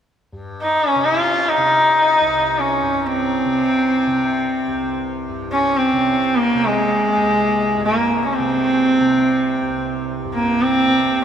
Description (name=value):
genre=indian classical, Hindustani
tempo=free time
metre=none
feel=none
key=C raga bhairavi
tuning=A4 = 440 Hz
part: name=tanpura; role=drone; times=0.3-11.2 s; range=C2 to C3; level=-27 LUFS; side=right 1 dB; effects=none
part: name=clear sarangi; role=melody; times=0.6-11.2 s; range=Ab3 to F4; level=-16 LUFS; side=equal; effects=none
room=wet cathedral reverb, RT60 4.5 s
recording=recorded in a church or concert hall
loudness=-15 LUFS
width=side -8 dB against mid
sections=0.3-11.2 A section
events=none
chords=none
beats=free time